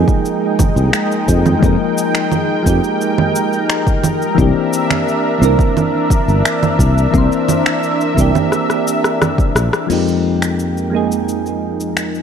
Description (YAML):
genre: sunset chillout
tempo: 87 BPM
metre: 4/4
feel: straight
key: F dorian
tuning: A4 = 440 Hz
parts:
  - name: soft electric-piano-like synth keys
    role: accompaniment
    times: 0.0-12.2 s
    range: E3 to C5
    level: -18 LUFS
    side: moving between left 9 dB and right 8 dB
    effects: chorus, auto-pan, tape echo
  - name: lush unison pad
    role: sustained chords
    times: 0.0-12.2 s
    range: Ab3 to G5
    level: -19 LUFS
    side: equal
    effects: chorus
  - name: sustaining fretless electric bass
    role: bass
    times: 0.0-12.2 s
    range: G1 to F2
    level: -16 LUFS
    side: equal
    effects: none
  - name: electronic kick drum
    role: drums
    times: 0.1-9.5 s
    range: none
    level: -15 LUFS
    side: equal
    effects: none
  - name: smooth R&B drum kit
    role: drums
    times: 0.1-12.2 s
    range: congas, crash cymbal, finger snaps, rim click, shaker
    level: -19 LUFS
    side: right 3 dB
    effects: none
room: light reverb, digital ambience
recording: none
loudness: -13 LUFS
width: side -7 dB against mid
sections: 0.0-9.9 A section; 9.9-12.2 B section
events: drum fill 8.5-9.9; filter sweep on analog synth pad 9.9-12.2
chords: 0.0 Fm11; 4.4 C9; 9.9 Fm11